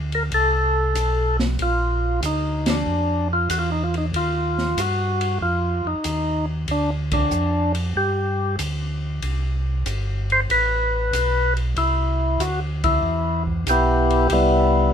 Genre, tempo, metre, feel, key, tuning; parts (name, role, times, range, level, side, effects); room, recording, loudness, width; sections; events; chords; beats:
soul jazz organ trio; 94 BPM; 4/4; swing 69% on 8ths; C major; A4 = 439 Hz
mellow tonewheel organ; bass; 0.0-14.9 s; G1 to G2; -23 LUFS; equal; slow rotary speaker
percussive tonewheel organ; melody; 0.1-14.9 s; G3 to C5; -21 LUFS; left 1 dB; slow rotary speaker
open jazz drum kit; drums; 0.1-14.5 s; hi-hat, kick drum, ride cymbal, snare drum; -30 LUFS; equal
moderate club ambience, RT60 0.5 s; minimal, uncompressed stereo recording; -19 LUFS; side -8 dB against mid
0.0-14.3 A section
band accent 2.6-2.9, 7.0-7.3, 12.7-13.0
0.0 F (rootless); 1.6 Bb; 4.1 Eb; 6.7 Dm; 8.0 G5; 9.2 Cmaj7
0.33 0.96 | 1.60 2.23 2.87 3.51 | 4.14 4.78 5.41 6.05 | 6.68 7.32 7.96 8.59 | 9.23 9.86 10.50 11.13 | 11.77 12.40 13.03 13.67 | 14.30 14.93